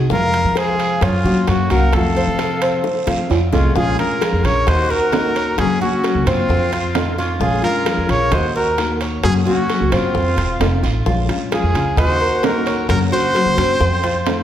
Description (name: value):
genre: latin, Cuban son and guajira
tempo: 131 BPM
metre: 4/4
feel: straight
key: Bb minor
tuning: A4 = 441 Hz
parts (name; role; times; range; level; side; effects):
- nylon-string guitar; accompaniment; 0.0-14.4 s; C3 to Gb4; -22 LUFS; left 3 dB; none
- Cuban tres; arpeggios; 0.0-14.4 s; C4 to F5; -24 LUFS; right 2 dB; none
- upright bass; bass; 0.0-14.4 s; Eb1 to Gb3; -20 LUFS; equal; none
- clear trumpet; melody; 0.1-14.4 s; F4 to Db5; -20 LUFS; right 1 dB; slapback echo
- breathy bright jazz flute; second line; 0.1-13.8 s; C4 to Gb5; -27 LUFS; left 3 dB; none
- bongos; percussion; 0.1-14.4 s; none; -29 LUFS; left 6 dB; none
- guiro; percussion; 0.1-14.4 s; none; -34 LUFS; right 5 dB; none
- timbales; percussion; 0.3-14.4 s; none; -26 LUFS; right 4 dB; none
room: wet large studio reverb, RT60 1.4 s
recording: heard from further back in the room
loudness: -14 LUFS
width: side -10 dB against mid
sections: 0.0-3.8 A section; 3.8-14.4 B section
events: drum fill 2.8-3.8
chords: 0.1 Fm; 1.0 Gb; 1.9 F; 3.8 Bbm7; 4.7 Ebm; 5.6 Gb; 6.5 F7; 7.4 Bbm7; 8.3 Ebm; 9.2 Gb; 10.1 F7; 11.1 Bbm7; 12.0 Ebm; 12.9 Gb; 13.8 F7